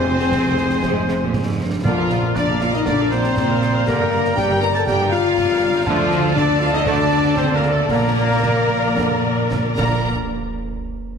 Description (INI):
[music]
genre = cinematic, heroic adventure film score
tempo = 110-121 BPM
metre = 4/4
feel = straight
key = Bb major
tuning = A4 = 440 Hz
[part]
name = warm symphonic violin section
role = melody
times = 0.0-10.1 s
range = F4 to Bb5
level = -30 LUFS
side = left 2 dB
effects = none
[part]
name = bright silver concert flute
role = second line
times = 0.0-10.1 s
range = Ab5 to Bb5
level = -30 LUFS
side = equal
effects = none
[part]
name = dark clarinet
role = second line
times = 0.0-10.0 s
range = C5 to D5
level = -28 LUFS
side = right 2 dB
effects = none
[part]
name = warm oboe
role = second line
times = 0.0-10.0 s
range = F4 to Bb5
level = -27 LUFS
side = right 2 dB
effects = none
[part]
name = warm symphonic violin section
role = second line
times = 0.0-10.1 s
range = F4 to Bb5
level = -28 LUFS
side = left 3 dB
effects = none
[part]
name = rich studio viola section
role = accompaniment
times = 0.0-10.1 s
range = F4 to G5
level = -26 LUFS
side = equal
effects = none
[part]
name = mellow French horn section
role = sustained chords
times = 0.0-10.0 s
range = F3 to Bb4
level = -21 LUFS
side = left 5 dB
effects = none
[part]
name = clear symphonic cello section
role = bass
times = 0.0-10.1 s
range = C2 to D3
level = -25 LUFS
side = right 4 dB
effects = none
[part]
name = rich chamber double bass section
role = bass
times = 0.0-10.1 s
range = F1 to D2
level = -25 LUFS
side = right 3 dB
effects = none
[part]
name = timpani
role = percussion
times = 0.0-2.6, 9.8-10.0 s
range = F2 to Bb2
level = -27 LUFS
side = right 2 dB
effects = none
[part]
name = concert snare drum, concert bass drum and clash cymbals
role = drums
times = 0.2-10.1 s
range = none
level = -28 LUFS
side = right 1 dB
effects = none
[part]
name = warm trombone section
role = sustained chords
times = 0.8-10.0 s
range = C3 to Bb3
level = -30 LUFS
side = right 4 dB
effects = none
[sound]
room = wet scoring stage reverb, RT60 1.6 s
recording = heavily compressed radio sound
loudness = -16 LUFS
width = side -6 dB against mid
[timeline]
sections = 0.0-10.1 A section; 10.1-11.2 B section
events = slowing down 4.9-10.1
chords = 0.0 Fm; 1.9 Bb; 3.9 Gm; 5.9 Dm; 7.9 Bb; 10.1 N.C.